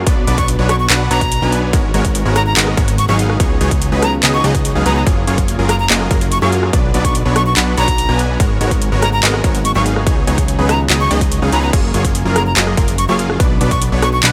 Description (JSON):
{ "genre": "future bass", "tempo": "144 BPM", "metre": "4/4", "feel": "half-time", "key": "F# major", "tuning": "A4 = 440 Hz", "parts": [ { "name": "airy breathy pad", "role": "sustained chords", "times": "0.0-14.3 s", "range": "C#3 to F#4", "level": "-31 LUFS", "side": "equal", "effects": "none" }, { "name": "supersaw stab", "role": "riff", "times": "0.0-14.3 s", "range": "F#3 to G#5", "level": "-21 LUFS", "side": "equal", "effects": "cassette tape, sidechain pumping" }, { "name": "fat analog bass", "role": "bass", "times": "0.0-14.3 s", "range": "F#1 to F#2", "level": "-19 LUFS", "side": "equal", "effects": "sidechain pumping" }, { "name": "electronic kick drum", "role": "drums", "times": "0.1-13.8 s", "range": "none", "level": "-19 LUFS", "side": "equal", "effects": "overdrive" }, { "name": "trap drum kit", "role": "drums", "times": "0.1-14.3 s", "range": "crash cymbal, handclaps, hi-hat, rim click", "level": "-20 LUFS", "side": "equal", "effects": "none" }, { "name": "breathy bright jazz flute", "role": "melody", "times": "0.4-14.2 s", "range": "A#5 to C#6", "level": "-23 LUFS", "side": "equal", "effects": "sidechain pumping, digital delay" } ], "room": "digital ambience", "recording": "none", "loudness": "-14 LUFS", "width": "mono", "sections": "0.0-14.3 A section", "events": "none", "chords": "0.1 Bm; 1.7 G#m11; 3.2 C#9sus4; 5.1 F#maj9; 6.7 Bm; 8.4 G#m11; 9.9 C#9sus4; 11.7 F#maj9; 13.4 Bm" }